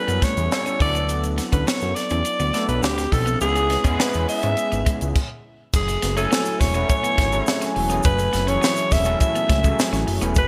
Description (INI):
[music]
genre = polished 1980s jazz-funk pop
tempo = 104 BPM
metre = 4/4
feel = straight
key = unclear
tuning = A4 = 440 Hz
[part]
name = raspy alto saxophone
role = melody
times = 0.0-10.5 s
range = G4 to E5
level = -26 LUFS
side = equal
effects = digital delay
[part]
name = overdriven tine electric piano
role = accompaniment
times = 0.0-10.4 s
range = E3 to G#5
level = -29 LUFS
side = equal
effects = analog chorus
[part]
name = clean electric guitar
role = riff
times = 0.1-10.3 s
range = G#3 to C#4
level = -35 LUFS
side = equal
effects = lush chorus
[part]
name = fat analog bass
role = bass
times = 0.1-10.5 s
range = E1 to G#2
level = -26 LUFS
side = equal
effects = none
[part]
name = crisp fusion drum kit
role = drums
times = 0.1-10.5 s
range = crash cymbal, hi-hat, kick drum, snare drum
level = -25 LUFS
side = equal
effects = none
[part]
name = tube shaker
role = percussion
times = 0.1-10.5 s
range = none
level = -40 LUFS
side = equal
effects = none
[part]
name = warm analog pad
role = sustained chords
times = 5.7-10.5 s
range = C#3 to G#5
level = -32 LUFS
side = equal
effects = chorus
[sound]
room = moderate plate reverb, RT60 1.2 s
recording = bright 1980s-style digital production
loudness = -21 LUFS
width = mono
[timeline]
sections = 0.0-5.7 A section; 5.7-10.5 B section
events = stop 5.2-5.7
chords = 0.0 A7; 0.8 D69; 2.8 Dm7; 3.4 C#m7; 5.7 Amaj13/E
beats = 0.52 | 1.10 1.68 2.26 2.84 | 3.42 4.00 4.58 5.16 | 5.74 6.31 6.89 7.47 | 8.05 8.63 9.21 9.79 | 10.37